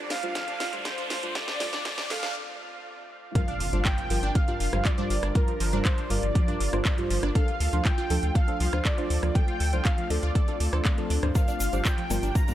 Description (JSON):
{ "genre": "progressive house", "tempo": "120 BPM", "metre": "4/4", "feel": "straight", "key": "G minor", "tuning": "A4 = 440 Hz", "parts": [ { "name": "wide unison lead", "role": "melody", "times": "0.0-12.5 s", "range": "Bb4 to Bb5", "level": "-33 LUFS", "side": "equal", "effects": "wide subtle chorus, cassette tape, dub echo" }, { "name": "evolving wavetable pad", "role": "sustained chords", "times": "0.0-12.5 s", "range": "G3 to A5", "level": "-38 LUFS", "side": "equal", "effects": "chorus, built-in reverb, sidechain pumping" }, { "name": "wide unison pluck", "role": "arpeggios", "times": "0.0-12.5 s", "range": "F3 to A5", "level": "-36 LUFS", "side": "right 1 dB", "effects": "phaser, sidechain pumping, digital delay" }, { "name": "riser and impact", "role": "sound effects", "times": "0.0-5.4 s", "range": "none", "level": "-35 LUFS", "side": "equal", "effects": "none" }, { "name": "round analog bass", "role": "bass", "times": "0.1-12.3 s", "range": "F1 to D2", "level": "-27 LUFS", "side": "equal", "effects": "sidechain pumping" }, { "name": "house drum kit", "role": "drums", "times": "0.1-12.5 s", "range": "handclaps, hi-hat, rim click, snare drum", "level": "-33 LUFS", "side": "right 1 dB", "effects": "sidechain pumping on hats" }, { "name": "deep mellow chord stab", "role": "stabs", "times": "0.2-12.5 s", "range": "G2 to C5", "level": "-34 LUFS", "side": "equal", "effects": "chorus, phaser, vintage 12-bit sampler grit, sidechain pumping" }, { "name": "electronic kick drum", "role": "drums", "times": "0.4-12.5 s", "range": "none", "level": "-24 LUFS", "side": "equal", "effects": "high-pass filter on kick, high-pass filter on room" }, { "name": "tube shaker", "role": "percussion", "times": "11.4-12.5 s", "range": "none", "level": "-38 LUFS", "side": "left 4 dB", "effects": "none" }, { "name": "woodblock and congas", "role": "percussion", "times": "11.4-12.5 s", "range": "none", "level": "-39 LUFS", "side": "left 3 dB", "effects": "sidechain pumping on perc" } ], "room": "little or no reverb", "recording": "high-pass filter", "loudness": "-24 LUFS", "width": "side -13 dB against mid", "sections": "0.0-3.4 A section; 3.4-12.5 B section", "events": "build-up 0.0-3.4; drum fill 0.0-2.4; riser 0.0-2.4; break 2.4-3.4; drop 3.4-12.5; impact 3.4-5.4", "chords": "0.0 Dm; 3.4 Gm7; 7.4 Dm; 11.4 Gm7" }